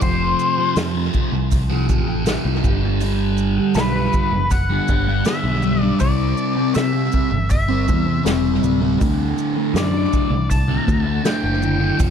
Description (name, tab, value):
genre	psychedelic rock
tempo	80 BPM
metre	4/4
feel	straight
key	unclear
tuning	A4 = 440 Hz
part	octave-fuzz lead guitar	melody	0.0-12.0 s	B4 to A5	-24 LUFS	left 2 dB	wah, distortion, tape echo
part	thick fuzz guitar	riff	0.0-12.1 s	D2 to C4	-20 LUFS	equal	distortion, phaser, tape echo
part	picked electric bass	bass	0.0-12.1 s	D1 to C3	-21 LUFS	equal	none
part	vintage drum kit	drums	0.0-12.1 s	hi-hat, kick drum, snare drum	-22 LUFS	equal	none
part	maracas	percussion	0.0-12.1 s	none	-37 LUFS	right 13 dB	none
room	little or no reverb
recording	echo-heavy mix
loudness	-16 LUFS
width	side -8 dB against mid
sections	0.0-12.1 A section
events	none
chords	0.0 F; 2.6 Gmaj7; 6.0 C; 9.0 D5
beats	| 0.02 0.77 1.52 2.27 | 3.02 3.77 4.51 5.26 | 6.01 6.76 7.51 8.26 | 9.01 9.76 10.50 11.25 | 12.00